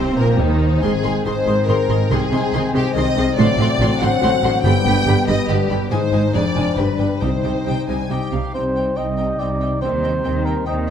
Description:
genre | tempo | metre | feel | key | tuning
classical | 141 BPM | 3/4 | straight | C minor | A4 = 440 Hz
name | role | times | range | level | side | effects
warm symphonic violin section | melody | 0.0-10.9 s | Eb4 to C6 | -32 LUFS | left 2 dB | none
warm symphonic violin section | second line | 0.0-10.8 s | Eb4 to G5 | -23 LUFS | left 1 dB | none
warm studio viola section | accompaniment | 0.0-10.8 s | D3 to Ab4 | -27 LUFS | right 1 dB | none
mellow French horn section | sustained chords | 0.0-10.9 s | Eb3 to Eb4 | -24 LUFS | left 4 dB | none
concert harp | arpeggios | 0.0-10.9 s | F2 to C6 | -24 LUFS | left 9 dB | none
warm symphonic cello section | bass | 0.0-10.9 s | Eb2 to Eb3 | -24 LUFS | right 3 dB | none
warm symphonic double bass section | bass | 0.0-10.9 s | F1 to Eb2 | -22 LUFS | right 3 dB | none
timpani | percussion | 2.1-7.8 s | G2 to C3 | -25 LUFS | equal | none
dark cor anglais | second line | 8.1-10.9 s | Eb4 to Eb5 | -23 LUFS | right 2 dB | none
room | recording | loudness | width
moderate scoring stage reverb, RT60 1.6 s | none | -16 LUFS | side -8 dB against mid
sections
0.0-8.5 A section; 8.5-10.9 A section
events
none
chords
0.0 Cm; 0.8 Ab; 2.1 Ab/C; 3.4 D7/A; 4.6 G; 5.9 Ab; 6.3 Ddim/F; 6.8 G; 7.2 Cm; 9.8 Cm/Eb

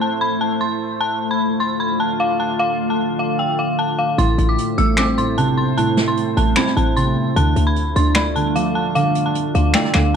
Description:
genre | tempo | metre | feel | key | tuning
hip hop, trap | 151 BPM | 4/4 | half-time | unclear | A4 = 444 Hz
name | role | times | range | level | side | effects
dark detuned synth bell | melody | 0.0-10.1 s | F5 to E6 | -21 LUFS | equal | chorus, ping-pong delay
deep dark ambient pad | sustained chords | 0.0-10.2 s | D3 to C5 | -22 LUFS | left 1 dB | chorus, built-in reverb
felt-muted upright piano | accompaniment | 4.2-10.2 s | A2 to D5 | -20 LUFS | right 3 dB | none
short 808-style bass | bass | 4.2-10.2 s | A1 to D2 | -19 LUFS | left 1 dB | none
jazz brush drum kit | drums | 4.2-10.0 s | finger snaps, hi-hat, rim click, snare drum | -21 LUFS | equal | vintage 12-bit sampler grit
room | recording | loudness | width
light reverb, small room ambience | dark, warm production | -16 LUFS | side -7 dB against mid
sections
0.0-10.2 A section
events
none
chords
0.0 Am; 1.0 Dm; 4.2 Am; 7.4 Dm

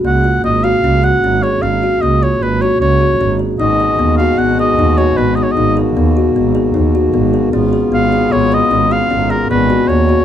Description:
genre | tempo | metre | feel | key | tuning
contemporary instrumental, chamber music in an uneven meter | 152 BPM | 5/4 | straight | G# dorian | A4 = 438 Hz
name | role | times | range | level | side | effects
kalimba | arpeggios | 0.0-10.2 s | A#3 to G#4 | -15 LUFS | left 3 dB | none
rich double bass | bass | 0.0-10.2 s | G#1 to D#2 | -16 LUFS | right 3 dB | none
clear oboe | melody | 0.1-10.2 s | A#4 to F#5 | -16 LUFS | equal | none
hand-pumped harmonium | sustained chords | 3.6-10.2 s | A#2 to F#4 | -22 LUFS | equal | none
room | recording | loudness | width
moderate studio reverb, RT60 0.8 s | dark, warm production | -11 LUFS | side -10 dB against mid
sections
0.0-10.2 A section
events
none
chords
0.0 F#maj7/G#; 3.6 G#m7; 7.5 C#7/G#; 9.5 G#m9

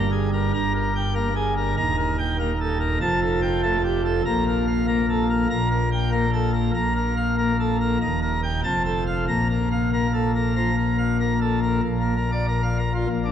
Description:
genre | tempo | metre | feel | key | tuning
classical, organ toccata | 96 BPM | 4/4 | straight | unclear | A4 = 442 Hz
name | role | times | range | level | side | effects
pipe organ, plenum | solo | 0.0-13.3 s | Eb1 to Bb5 | -20 LUFS | equal | none
room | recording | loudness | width
wet cathedral reverb, RT60 4.6 s | worn, warbling old tape, cassette tape, warbly pitch drift | -20 LUFS | side -9 dB against mid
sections
0.0-11.8 A section; 11.8-13.3 B section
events
none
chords
0.0 Gm; 1.8 Eb; 3.0 Fadd9; 4.3 Bb5; 5.5 Gmadd9/Bb; 6.7 Bb5; 8.0 Eb; 8.6 F; 9.3 Bb5; 11.8 Bb

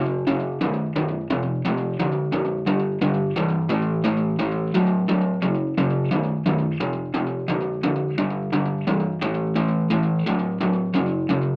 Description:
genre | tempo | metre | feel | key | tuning
rock | 87 BPM | 4/4 | straight | A mixolydian | A4 = 436 Hz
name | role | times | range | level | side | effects
raw garage guitar | solo | 0.0-11.6 s | F2 to F#3 | -23 LUFS | equal | overdrive, slapback echo
room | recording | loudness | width
moderate booth ambience, RT60 0.2 s | dry, close 1970s-style studio recording | -23 LUFS | mono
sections
0.0-11.6 A section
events
none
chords
0.0 F#5; 1.3 F5; 2.7 G5; 3.7 A5; 5.4 F#5; 6.8 F5; 8.2 G5; 9.2 A5; 10.9 F#5

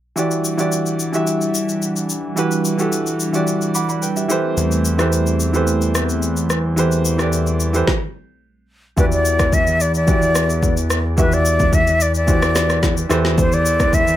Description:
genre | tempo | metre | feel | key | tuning
amapiano | 109 BPM | 4/4 | straight | E minor | A4 = 435 Hz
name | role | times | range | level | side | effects
warm grand piano | accompaniment | 0.2-14.2 s | E3 to D6 | -20 LUFS | right 1 dB | none
hollow soft pad | sustained chords | 0.2-7.8 s | E3 to F#5 | -24 LUFS | right 1 dB | chorus
deep house drum kit | drums | 0.2-14.2 s | kick drum, rim click, shaker, snare drum | -20 LUFS | equal | none
fat analog bass | bass | 4.6-14.2 s | E2 | -20 LUFS | equal | none
concert flute | melody | 9.0-14.2 s | B4 to E5 | -18 LUFS | left 1 dB | ping-pong delay
room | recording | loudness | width
little or no reverb | faint mains hum | -15 LUFS | side -12 dB against mid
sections
0.2-9.0 A section; 9.0-14.2 B section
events
grand piano fill 3.5-4.6; stop 7.9-9.0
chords
0.2 Em9; 4.3 Am9/E; 9.0 Em9; 13.1 Am9/E

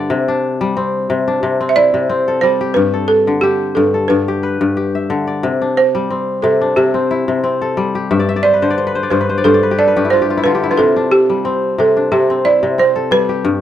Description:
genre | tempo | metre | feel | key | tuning
west african traditional, West African string and xylophone music | 90 BPM | 4/4 | swing 53% on 16ths | C major | A4 = 440 Hz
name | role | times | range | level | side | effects
kora | arpeggios | 0.0-13.6 s | G2 to E5 | -15 LUFS | left 3 dB | none
balafon | melody | 1.7-13.6 s | G4 to E5 | -14 LUFS | right 3 dB | none
room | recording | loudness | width
studio ambience | dry, close 1970s-style studio recording | -12 LUFS | side -11 dB against mid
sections
0.0-13.6 A section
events
kora fill 8.1-10.8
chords
0.1 C; 2.8 G; 5.4 C; 8.1 G5; 10.8 C

